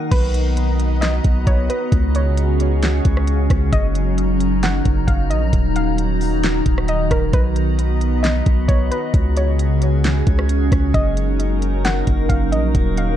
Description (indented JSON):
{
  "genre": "hip hop, atmospheric cloud-rap",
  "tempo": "133 BPM",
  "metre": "4/4",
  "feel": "half-time",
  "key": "F# major",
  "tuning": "A4 = 441 Hz",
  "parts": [
    { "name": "glassy FM pad", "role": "sustained chords", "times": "0.0-13.2 s", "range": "C#3 to A#5", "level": "-22 LUFS", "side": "equal", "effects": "ensemble chorus, built-in reverb, sidechain pumping" },
    { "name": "drifting glass-harmonics texture", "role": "texture", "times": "0.0-13.2 s", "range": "F#3 to D#5", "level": "-31 LUFS", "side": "equal", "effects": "chorus, built-in reverb" },
    { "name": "soft round pluck", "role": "melody", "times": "0.1-13.2 s", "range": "A#4 to F#5", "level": "-26 LUFS", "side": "right 1 dB", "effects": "chorus, digital delay" },
    { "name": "long sustained 808-style bass", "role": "bass", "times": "0.1-13.2 s", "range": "D#1 to C#2", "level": "-18 LUFS", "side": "equal", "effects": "none" },
    { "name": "smooth R&B drum kit", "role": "drums", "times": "0.1-13.1 s", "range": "crash cymbal, hi-hat, kick drum, rim click, snare drum", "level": "-19 LUFS", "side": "equal", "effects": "vintage 12-bit sampler grit" }
  ],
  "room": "digital ambience",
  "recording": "dark, warm production",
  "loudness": "-15 LUFS",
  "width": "side -11 dB against mid",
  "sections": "0.1-13.2 A section",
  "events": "none",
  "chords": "0.1 Bmaj7; 1.9 C#sus4; 3.7 F#6; 5.5 D#m; 7.3 Bmaj7; 9.1 C#sus4; 10.9 F#6"
}